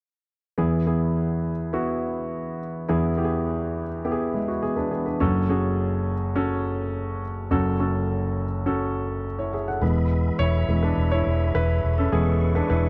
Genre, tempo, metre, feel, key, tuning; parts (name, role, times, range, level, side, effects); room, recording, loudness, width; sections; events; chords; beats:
pop; 104 BPM; 4/4; straight; A4 = 440 Hz
warm grand piano; accompaniment; 0.6-12.9 s; F#1 to F#5; -25 LUFS; equal
tonewheel organ; sustained chords; 9.8-12.9 s; G#4 to C#6; -38 LUFS; equal; overdrive, chorus vibrato, fast rotary speaker
vintage muted fingered electric bass; bass; 9.8-12.9 s; E1; -25 LUFS; equal
studio reverb; dry, close 1970s-style studio recording; -25 LUFS; mono
0.6-9.8 A section; 9.8-12.9 B section
grand piano solo 9.8-12.9
0.6 E; 5.2 F#m; 9.8 E
| 0.58 1.16 1.74 2.31 | 2.89 3.47 4.05 4.62 | 5.20 5.78 6.36 6.93 | 7.51 8.09 8.66 9.24 | 9.82 10.39 10.97 11.55 | 12.12 12.70